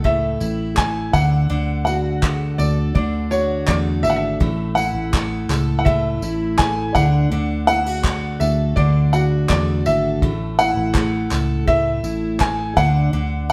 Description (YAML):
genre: acoustic pop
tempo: 82 BPM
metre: 4/4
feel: straight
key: A major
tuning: A4 = 440 Hz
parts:
  - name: clear upright piano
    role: melody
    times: 0.0-13.5 s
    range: C#5 to G#5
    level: -24 LUFS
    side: equal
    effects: none
  - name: fingerpicked twelve-string acoustic guitar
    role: accompaniment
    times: 0.0-13.5 s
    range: A2 to A4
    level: -24 LUFS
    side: equal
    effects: none
  - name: vintage muted fingered electric bass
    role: bass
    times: 0.0-13.5 s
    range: G#1 to E2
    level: -25 LUFS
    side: equal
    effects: none
  - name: cloth-damped thuddy drum kit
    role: drums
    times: 0.0-13.5 s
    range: handclaps, kick drum, tambourine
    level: -24 LUFS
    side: equal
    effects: none
room: wet stone room reverb, RT60 1.0 s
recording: band playing live in one room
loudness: -19 LUFS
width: mono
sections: 0.0-13.5 A section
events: none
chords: 0.0 A; 1.1 D; 4.4 A; 7.0 D; 10.2 A; 12.8 D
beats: 0.05 0.78 | 1.50 2.23 2.96 3.68 | 4.41 5.13 5.86 6.59 | 7.32 8.04 8.77 9.50 | 10.22 10.95 11.68 12.41 | 13.14